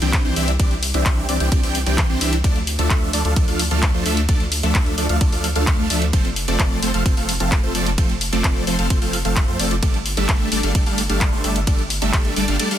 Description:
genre	EDM, festival progressive house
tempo	130 BPM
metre	4/4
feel	straight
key	D minor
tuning	A4 = 441 Hz
part	big supersaw lead	riff	0.0-12.8 s	E3 to G5	-22 LUFS	equal	phaser, sidechain pumping, dub echo
part	saturated sub bass	bass	0.0-12.6 s	F1 to F2	-23 LUFS	equal	sidechain pumping
part	house drum kit	drums	0.0-12.8 s	handclaps, hi-hat, ride cymbal	-24 LUFS	equal	small room ambience
part	electronic kick drum	drums	0.1-12.2 s	none	-19 LUFS	equal	small room ambience
room	digital ambience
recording	dense, heavily limited modern master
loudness	-16 LUFS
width	side -11 dB against mid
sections	0.0-12.8 A section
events	none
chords	0.0 Cadd9; 2.4 Dm; 6.1 F; 9.8 Gsus2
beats	0.13 | 0.59 1.06 1.52 1.98 | 2.44 2.90 3.36 3.83 | 4.29 4.75 5.21 5.67 | 6.13 6.59 7.06 7.52 | 7.98 8.44 8.90 9.36 | 9.83 10.29 10.75 11.21 | 11.67 12.13 12.60

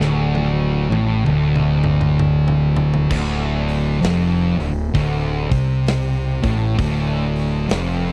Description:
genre	stoner and doom metal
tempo	65 BPM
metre	4/4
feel	swing 62% on 8ths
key	D minor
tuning	A4 = 441 Hz
part	thick fuzz guitar	riff	0.0-8.1 s	D2 to C3	-23 LUFS	equal	distortion
part	thick fuzz guitar	riff	0.0-8.1 s	D2 to C3	-23 LUFS	equal	distortion
part	fuzz fingered electric bass	bass	0.0-8.1 s	D1 to C2	-26 LUFS	equal	overdrive
part	big rock drum kit	drums	0.0-8.0 s	crash cymbal, hi-hat, kick drum, snare drum, toms	-27 LUFS	equal	none
room	light reverb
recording	dry, close 1970s-style studio recording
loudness	-19 LUFS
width	mono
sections	0.0-3.1 A section; 3.1-8.1 B section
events	drum fill 0.0-3.1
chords	0.0 D5; 3.1 Dm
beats	0.33 1.25 2.17 | 3.09 4.01 4.93 5.85 | 6.77 7.69

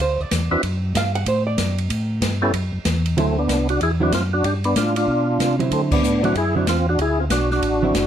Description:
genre	soul jazz organ trio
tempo	189 BPM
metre	4/4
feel	swing 64% on 8ths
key	D mixolydian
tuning	A4 = 440 Hz
part	hollow-body jazz guitar	accompaniment	0.0-7.9 s	D3 to F#5	-23 LUFS	right 4 dB	none
part	mellow tonewheel organ	bass	0.0-8.1 s	F#1 to D3	-22 LUFS	equal	slow rotary speaker
part	open jazz drum kit	drums	0.0-8.0 s	crash cymbal, hi-hat, kick drum, ride cymbal, snare drum	-26 LUFS	equal	none
part	percussive tonewheel organ	melody	0.5-8.1 s	A3 to B4	-20 LUFS	equal	slow rotary speaker, overdrive, chorus vibrato, plate reverb
room	moderate club reverb, RT60 0.6 s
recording	none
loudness	-18 LUFS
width	side -9 dB against mid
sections	0.0-3.2 A section; 3.2-8.1 B section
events	hollow-body jazz guitar solo 0.0-3.2; band accent 5.9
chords	0.0 G (rootless); 0.6 D; 1.9 A7(no3); 3.2 D9; 4.4 G9; 5.7 D9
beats	0.31 | 0.63 0.94 1.26 1.58 | 1.90 2.21 2.53 2.85 | 3.17 3.49 3.80 4.12 | 4.44 4.76 5.08 5.39 | 5.71 6.03 6.35 6.66 | 6.98 7.30 7.62 7.93

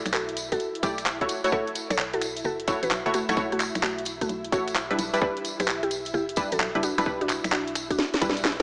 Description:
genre	UK garage, two-step garage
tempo	130 BPM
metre	4/4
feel	swing 66% on 16ths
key	unclear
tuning	A4 = 442 Hz
part	mallet-like synth pluck	melody	0.0-8.4 s	G3 to C#5	-33 LUFS	equal	chorus, digital delay
part	ethereal airy pad	sustained chords	0.0-8.6 s	E4 to E5	-40 LUFS	equal	ensemble chorus, built-in reverb, tremolo, sidechain pumping
part	punchy chord stab	stabs	0.0-8.6 s	G3 to D5	-31 LUFS	equal	chorus, dub echo
part	organ-like FM bass	bass	0.1-8.6 s	F#1 to B1	-41 LUFS	equal	none
part	garage drum kit	drums	0.1-8.6 s	finger snaps, handclaps, hi-hat, snare drum	-30 LUFS	equal	studio reverb
part	tambourine	percussion	0.1-8.6 s	none	-40 LUFS	equal	none
part	electronic kick drum	drums	0.5-8.6 s	none	-33 LUFS	equal	studio reverb
room	light reverb, digital ambience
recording	small speaker sound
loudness	-27 LUFS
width	mono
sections	0.0-8.6 A section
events	drum fill 8.0-8.6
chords	0.0 F#m7; 5.0 Em7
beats	0.14 0.60 1.06 | 1.52 1.99 2.45 2.91 | 3.37 3.83 4.29 4.75 | 5.21 5.68 6.14 6.60 | 7.06 7.52 7.99 8.45

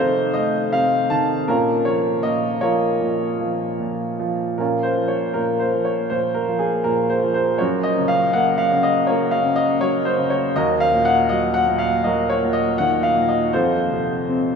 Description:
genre	classical, lyrical solo piano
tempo	80 BPM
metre	4/4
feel	rubato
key	Bb minor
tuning	A4 = 439 Hz
part	clear baby grand piano	solo	0.0-14.6 s	Eb2 to A5	-17 LUFS	equal	none
room	wet cathedral reverb, RT60 7.2 s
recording	recorded in a church or concert hall, small room ambience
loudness	-17 LUFS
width	side -6 dB against mid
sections	0.0-4.6 A section; 4.6-14.6 B section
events	none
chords	0.0 F7; 1.5 Bbm; 7.6 Gb; 10.5 Ebm; 13.5 F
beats	0.73 | 1.48 2.23 3.00 3.80 | 4.59 5.35 6.11 6.85 | 7.59 8.34 9.07 9.80 | 10.55 11.29 12.03 12.78 | 13.53 14.29

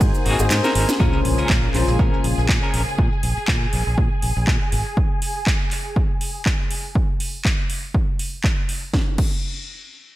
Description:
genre	filtered disco house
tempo	121 BPM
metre	4/4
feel	swing 55% on 16ths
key	Bb minor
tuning	A4 = 440 Hz
part	dark grand piano	accompaniment	0.0-3.0 s	Db3 to C5	-24 LUFS	left 4 dB	phaser, sidechain pumping, low-pass filter
part	rich studio string section	sustained chords	0.0-7.0 s	Ab4 to Ab5	-30 LUFS	equal	sidechain pumping, low-pass filter
part	semi-hollow electric guitar	riff	0.0-2.8 s	C4 to Bb4	-26 LUFS	left 1 dB	tremolo, sidechain pumping, low-pass filter
part	modern bright fingered electric bass	bass	0.0-4.8 s	Ab1 to Bb2	-22 LUFS	equal	sidechain pumping, low-pass filter
part	electronic kick drum	drums	0.0-9.3 s	none	-20 LUFS	equal	overdrive
part	house drum kit	drums	0.0-9.3 s	cabasa, crash cymbal, handclaps, hi-hat, ride cymbal, snare drum	-26 LUFS	equal	overdrive, sidechain pumping on cymbals, sidechain pumping on perc, sidechain pumping on hats, gated reverb
part	maracas	percussion	0.0-6.9 s	none	-41 LUFS	right 9 dB	none
part	impact	sound effects	1.1-3.0 s	none	-28 LUFS	right 1 dB	none
room	little or no reverb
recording	bright 1980s-style digital production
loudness	-18 LUFS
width	side -16 dB against mid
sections	0.0-1.0 A section; 1.0-8.9 B section; 8.9-10.2 C section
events	drop 0.0-1.0; kick drops out 0.5-1.0; drum fill 0.5-1.0; impact 1.0-3.0; filter sweep 1.0-8.9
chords	0.0 Ab7; 1.0 Bbm7; 4.7 N.C.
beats	0.01 0.51 | 1.00 1.50 1.99 2.49 | 2.99 3.48 3.98 4.47 | 4.97 5.46 5.96 6.46 | 6.95 7.45 7.94 8.44 | 8.94

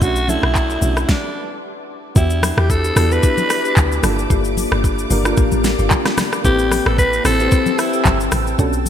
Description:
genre	amapiano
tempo	112 BPM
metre	4/4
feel	swing 55% on 16ths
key	E minor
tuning	A4 = 440 Hz
part	raspy alto saxophone	melody	0.0-8.3 s	D4 to B4	-21 LUFS	equal	digital delay
part	mellow FM electric piano	accompaniment	0.0-8.9 s	A3 to C5	-25 LUFS	right 5 dB	chorus
part	ethereal airy pad	sustained chords	0.0-8.9 s	Bb3 to E6	-26 LUFS	equal	ensemble chorus, built-in reverb, phaser, sidechain pumping
part	deep log drum bass	bass	0.0-8.9 s	G1 to E2	-19 LUFS	equal	none
part	smooth R&B drum kit	drums	0.0-8.9 s	handclaps, hi-hat, kick drum, rim click, shaker, snare drum	-18 LUFS	equal	gated reverb
part	congas	percussion	0.3-8.9 s	none	-27 LUFS	left 3 dB	none
part	marimba with medium mallets	stabs	2.2-8.9 s	Bb3 to A4	-23 LUFS	left 10 dB	digital delay
room	light reverb, digital ambience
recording	bright 1980s-style digital production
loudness	-14 LUFS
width	side -9 dB against mid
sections	0.0-2.2 A section; 2.2-8.9 B section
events	stop 1.1-2.2; drop 2.2-8.9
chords	0.0 Bm7; 2.2 Em7; 4.0 Gm7; 6.4 Am7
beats	| 0.02 0.55 1.09 1.62 | 2.16 2.69 3.23 3.77 | 4.30 4.84 5.37 5.91 | 6.45 6.98 7.52 8.05 | 8.59

